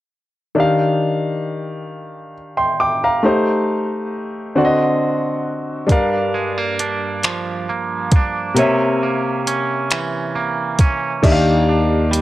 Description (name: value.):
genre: slow six-eight R&B.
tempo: 45 BPM (dotted quarters).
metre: 6/8.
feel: straight.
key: Eb major.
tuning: A4 = 441 Hz.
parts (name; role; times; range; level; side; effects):
clear grand piano; accompaniment; 0.6-12.2 s; C3 to D6; -18 LUFS; left 1 dB; none.
twangy electric guitar; second line; 5.9-12.2 s; G2 to D4; -21 LUFS; right 4 dB; none.
smooth R&B drum kit; drums; 5.9-12.2 s; crash cymbal, finger snaps, hi-hat, kick drum; -16 LUFS; equal; none.
modern bright fingered electric bass; bass; 11.2-12.2 s; Eb2; -17 LUFS; equal; none.
room: light reverb.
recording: worn, warbling old tape, cassette tape, warbly pitch drift.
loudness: -16 LUFS.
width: side -15 dB against mid.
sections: 0.6-11.2 A section.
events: none.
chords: 0.6 Ebmaj9; 3.2 Am7b5; 4.6 D7b9; 5.9 Gm7; 8.6 C7b9; 11.2 Ebmaj9.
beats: | 0.56 1.89 | 3.23 4.56 | 5.89 7.23 | 8.56 9.89 | 11.23.